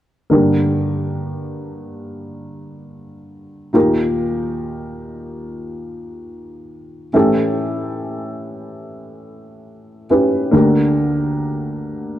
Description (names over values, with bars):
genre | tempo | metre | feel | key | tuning
pop | 70 BPM | 4/4 | straight | G minor | A4 = 440 Hz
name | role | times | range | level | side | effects
dark upright piano | accompaniment | 0.3-12.2 s | D2 to B4 | -17 LUFS | equal | none
room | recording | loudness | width
light reverb, small room ambience | dry, close 1970s-style studio recording | -15 LUFS | side -12 dB against mid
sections
0.3-12.2 A section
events
none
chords
0.3 Gm; 3.7 Ebadd9; 7.1 A7; 10.5 Gm/D